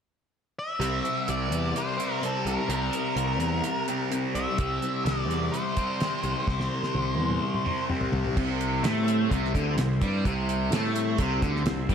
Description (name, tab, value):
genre	psychedelic rock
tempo	127 BPM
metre	4/4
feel	straight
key	C mixolydian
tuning	A4 = 439 Hz
part	octave-fuzz lead guitar	melody	0.6-7.8 s	A4 to E5	-31 LUFS	equal	distortion, ping-pong delay
part	fuzz guitar	riff	0.8-11.9 s	C3 to C4	-28 LUFS	left 1 dB	distortion, phaser
part	fuzz picked electric bass	bass	0.8-11.9 s	C2 to A2	-29 LUFS	equal	overdrive
part	damped 70s drum kit	drums	0.8-11.9 s	crash cymbal, hi-hat, kick drum, snare drum, toms	-31 LUFS	equal	none
part	combo organ	sustained chords	8.4-11.9 s	G3 to E4	-34 LUFS	right 1 dB	none
room	moderate lush hall reverb, RT60 1.8 s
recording	dreamy mix soaked in reverb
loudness	-24 LUFS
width	side -7 dB against mid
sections	0.8-8.4 A section; 8.4-11.9 B section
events	drum fill 6.5-8.4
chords	0.0 N.C.; 0.8 C5; 8.4 C